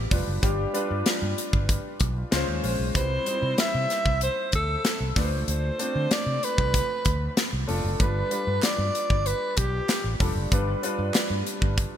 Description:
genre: polished 1980s jazz-funk pop.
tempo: 95 BPM.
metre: 4/4.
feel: straight.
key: unclear.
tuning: A4 = 442 Hz.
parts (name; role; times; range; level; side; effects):
breathy alto saxophone; melody; 0.0-10.2 s; G4 to E5; -29 LUFS; equal; none.
clear concert grand piano; accompaniment; 0.0-12.0 s; G3 to D5; -31 LUFS; left 1 dB; wide subtle chorus.
fretless electric bass; bass; 0.0-11.8 s; F1 to D3; -28 LUFS; equal; none.
modern studio drum kit; drums; 0.1-11.9 s; hi-hat, kick drum, snare drum; -26 LUFS; equal; none.
group handclap; percussion; 8.6-11.3 s; none; -40 LUFS; right 5 dB; none.
room: moderate lush hall reverb, RT60 2.6 s.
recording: bright 1980s-style digital production.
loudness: -23 LUFS.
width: side -10 dB against mid.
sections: 0.0-12.0 A section.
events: none.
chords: 0.0 G7; 2.3 Dbmaj7; 3.0 Cmaj7; 5.2 Dm7; 8.0 G7.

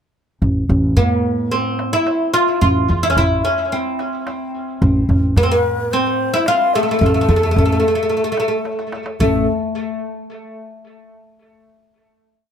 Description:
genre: Arabic maqam ensemble.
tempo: 109 BPM.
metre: 4/4.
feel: straight.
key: A maqam saba.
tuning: A4 = 440 Hz.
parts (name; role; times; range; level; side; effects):
upright bass; bass; 0.4-9.5 s; A1 to A2; -18 LUFS; equal; none.
darbuka; percussion; 0.4-9.5 s; none; -20 LUFS; right 1 dB; none.
oud; melody; 1.0-9.5 s; A3 to F4; -18 LUFS; equal; tape echo.
breathy low ney; second line; 5.4-9.5 s; A4 to F5; -22 LUFS; left 6 dB; none.
room: light reverb.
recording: close, detailed microphones.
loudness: -15 LUFS.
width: side -8 dB against mid.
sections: 0.4-9.2 A section; 9.2-11.4 final note.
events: drum fill 8.7-9.2.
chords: none.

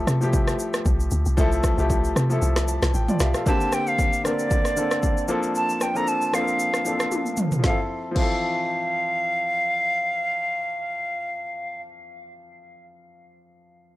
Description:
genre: amapiano.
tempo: 115 BPM.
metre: 4/4.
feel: swing 55% on 16ths.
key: F major.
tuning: A4 = 439 Hz.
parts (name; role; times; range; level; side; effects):
clear baby grand piano; accompaniment; 0.0-14.0 s; D3 to A5; -26 LUFS; left 1 dB; none.
deep log drum bass; bass; 0.0-3.3 s; A1 to C3; -22 LUFS; equal; none.
deep house drum kit; drums; 0.1-8.3 s; crash cymbal, kick drum, rim click, shaker, snare drum, toms; -24 LUFS; equal; none.
breathy bright concert flute; melody; 3.5-11.8 s; D5 to Bb5; -24 LUFS; equal; analog delay.
room: little or no reverb.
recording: dry, gritty hardware recording.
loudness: -20 LUFS.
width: side -16 dB against mid.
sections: 0.0-3.5 A section; 3.5-7.6 B section; 7.6-11.8 C section.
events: kick muted 2.4-3.5; grand piano fill 2.4-3.5; drum fill 7.1-7.6.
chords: 0.0 Fmaj9/C; 3.5 Bb69; 5.3 C13sus4; 7.6 Fmaj7.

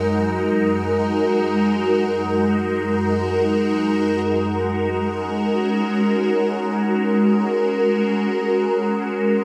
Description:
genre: ambient.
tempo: free time.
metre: none.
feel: none.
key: F# major.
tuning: A4 = 441 Hz.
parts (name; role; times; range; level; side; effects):
evolving wavetable pad; solo; 0.0-9.4 s; F#2 to A#4; -20 LUFS; equal; ensemble chorus, built-in reverb, phaser, analog delay.
room: wet spring reverb, RT60 2.4 s.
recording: echo-heavy mix.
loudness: -20 LUFS.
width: mono.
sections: 0.0-4.3 A section; 4.3-9.4 B section.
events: none.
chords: 0.0 D#m/F#; 4.3 F#add9.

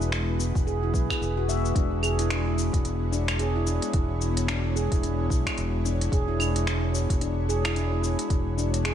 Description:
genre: organic downtempo.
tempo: 110 BPM.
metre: 4/4.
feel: swing 59% on 16ths.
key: E mixolydian.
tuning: A4 = 441 Hz.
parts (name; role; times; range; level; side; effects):
ethereal airy pad; sustained chords; 0.0-8.9 s; G#3 to C#5; -33 LUFS; left 1 dB; ensemble chorus, built-in reverb, sidechain pumping.
mellow fretless electric bass; bass; 0.0-8.9 s; E1 to B1; -27 LUFS; equal; sidechain pumping.
organic electronic drum kit; drums; 0.0-8.9 s; cabasa, claves, finger snaps, hi-hat; -32 LUFS; equal; none.
handpan; arpeggios; 0.4-8.9 s; B3 to E5; -30 LUFS; equal; ping-pong delay.
electronic kick drum; drums; 0.6-8.4 s; none; -26 LUFS; equal; none.
room: light reverb, digital ambience.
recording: none.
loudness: -23 LUFS.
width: side -10 dB against mid.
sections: 0.0-8.9 A section.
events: none.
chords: 0.0 Eadd9.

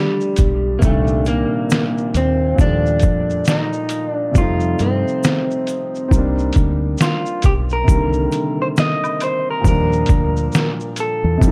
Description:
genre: lo-fi hip hop.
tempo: 68 BPM.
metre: 4/4.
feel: swing 60% on 16ths.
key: C dorian.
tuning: A4 = 440 Hz.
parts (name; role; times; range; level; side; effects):
electric guitar through a small old amp; melody; 0.0-11.5 s; G3 to Eb5; -23 LUFS; equal; tape echo.
warm upright piano; accompaniment; 0.0-11.5 s; Bb2 to D5; -25 LUFS; equal; cassette tape.
trip hop sampler-style drum kit; drums; 0.2-11.5 s; hi-hat, kick drum, shaker, snare drum; -20 LUFS; equal; none.
deep dub fingered electric bass; bass; 0.4-11.5 s; B1 to G2; -22 LUFS; equal; none.
egg shaker and woodblock; percussion; 0.4-11.5 s; none; -36 LUFS; equal; none.
room: digital ambience.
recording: dark, warm production.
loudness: -18 LUFS.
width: mono.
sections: 0.0-7.9 A section; 7.9-11.5 B section.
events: none.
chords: 0.0 G5; 0.8 Cm9; 2.6 Ebmaj9#11; 4.4 F9; 6.1 Cm9; 9.6 Ebmaj9.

